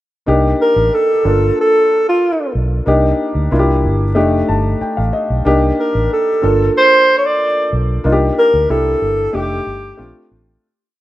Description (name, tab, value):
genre	lush 1970s-style soul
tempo	93 BPM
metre	4/4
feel	straight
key	C dorian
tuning	A4 = 443 Hz
part	warm concert grand piano	accompaniment	0.3-10.7 s	A3 to A5	-17 LUFS	left 1 dB	none
part	vintage muted fingered electric bass	bass	0.3-10.6 s	F1 to D2	-17 LUFS	equal	none
part	warm alto saxophone	melody	0.6-10.3 s	F4 to D5	-13 LUFS	right 1 dB	none
room	light reverb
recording	rough home demo mix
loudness	-12 LUFS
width	side -15 dB against mid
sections	0.3-10.6 verse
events	grand piano fill 4.2-5.5; fade-out 8.0-10.6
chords	0.3 Cm9; 1.2 Gm9; 2.9 Cm9; 3.5 C9; 4.2 F13; 5.5 Cm9; 6.4 Gm9; 8.0 Cm9; 8.7 C9; 9.3 F13; 10.0 Bbmaj7